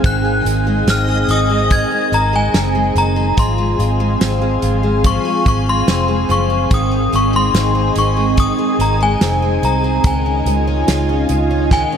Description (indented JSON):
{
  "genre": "dream pop",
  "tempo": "72 BPM",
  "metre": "4/4",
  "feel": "straight",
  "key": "Ab mixolydian",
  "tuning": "A4 = 439 Hz",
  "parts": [
    { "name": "ethereal airy pad", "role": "sustained chords", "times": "0.0-12.0 s", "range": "C4 to Ab5", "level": "-20 LUFS", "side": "right 3 dB", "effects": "ensemble chorus, built-in reverb" },
    { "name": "picked twelve-string acoustic guitar", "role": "arpeggios", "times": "0.0-12.0 s", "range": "Eb3 to F4", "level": "-21 LUFS", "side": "left 3 dB", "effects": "wide subtle chorus, digital delay" },
    { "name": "vintage muted fingered electric bass", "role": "bass", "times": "0.0-11.8 s", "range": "F1 to Db2", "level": "-18 LUFS", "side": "equal", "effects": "none" },
    { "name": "loose indie drum kit", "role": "drums", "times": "0.0-11.9 s", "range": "hi-hat, kick drum, snare drum", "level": "-17 LUFS", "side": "right 1 dB", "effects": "none" },
    { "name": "backwards swelling texture", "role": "texture", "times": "0.4-5.1 s", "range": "Eb5 to Ab5", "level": "-30 LUFS", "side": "equal", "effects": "built-in reverb, digital delay" },
    { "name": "synth chime", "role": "melody", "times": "0.1-12.0 s", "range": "Ab5 to Ab6", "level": "-19 LUFS", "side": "left 2 dB", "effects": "ensemble chorus, tremolo, digital delay" }
  ],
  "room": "light reverb, small room ambience",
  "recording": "none",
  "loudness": "-13 LUFS",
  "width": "side -8 dB against mid",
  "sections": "0.0-12.0 A section",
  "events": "drum fill 11.7",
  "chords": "0.0 Ab; 3.4 Fm/Ab; 6.7 Ab; 10.0 Dbadd9"
}